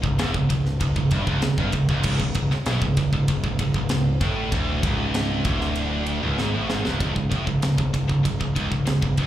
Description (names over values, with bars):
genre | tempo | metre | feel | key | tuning
heavy metal | 97 BPM | 4/4 | straight | unclear | A4 = 439 Hz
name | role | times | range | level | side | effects
heavy high-gain guitar | riff | 0.0-9.3 s | C#2 to B2 | -26 LUFS | right 6 dB | distortion, slapback echo
scooped high-gain guitar | riff | 0.0-9.3 s | C#2 to B2 | -27 LUFS | left 5 dB | distortion, slapback echo
growling picked electric bass | bass | 0.0-9.3 s | C#1 to B1 | -27 LUFS | equal | overdrive
tight metal drum kit | drums | 0.0-9.3 s | crash cymbal, kick drum, ride cymbal, snare drum | -26 LUFS | equal | none
room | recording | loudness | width
small room ambience | live gig heard through the venue's PA, club reverb | -20 LUFS | side -12 dB against mid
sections
0.0-7.0 A section; 7.0-9.3 B section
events
drum fill 6.4-7.0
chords
0.0 C#5; 7.0 N.C.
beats
0.19 0.81 1.43 | 2.05 2.67 3.29 3.91 | 4.53 5.15 5.77 6.39 | 7.01 7.63 8.25 8.87